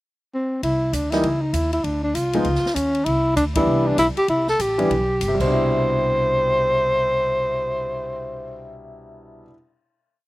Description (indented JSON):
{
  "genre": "jazz, small-group swing and bop",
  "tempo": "196 BPM",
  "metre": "4/4",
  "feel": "swing 62% on 8ths",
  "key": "C major",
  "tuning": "A4 = 441 Hz",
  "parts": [
    { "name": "breathy tenor saxophone", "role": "melody", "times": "0.3-8.7 s", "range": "C4 to C5", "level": "-20 LUFS", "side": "equal", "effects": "none" },
    { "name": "upright bass", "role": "bass", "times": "0.6-9.4 s", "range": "G1 to Eb2", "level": "-26 LUFS", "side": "right 1 dB", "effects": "none" },
    { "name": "swinging big-band drum kit", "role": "drums", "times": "0.6-5.5 s", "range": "crash cymbal, hi-hat, kick drum, ride cymbal, snare drum", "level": "-32 LUFS", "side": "equal", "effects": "none" },
    { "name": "clear concert grand piano", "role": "accompaniment", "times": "1.1-9.5 s", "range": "B2 to E4", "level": "-24 LUFS", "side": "equal", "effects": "none" }
  ],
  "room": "little or no reverb",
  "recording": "recorded outdoors, with no room sound",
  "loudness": "-18 LUFS",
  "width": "side -18 dB against mid",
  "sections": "0.0-0.6 pickup bar; 0.6-5.5 A section; 5.5-8.0 final hit",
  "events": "band accent 3.5",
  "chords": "0.0 N.C.; 0.6 Cadd9; 1.2 Dbmadd9; 1.8 Dm7; 2.4 Dbadd9; 3.1 Cmaj9"
}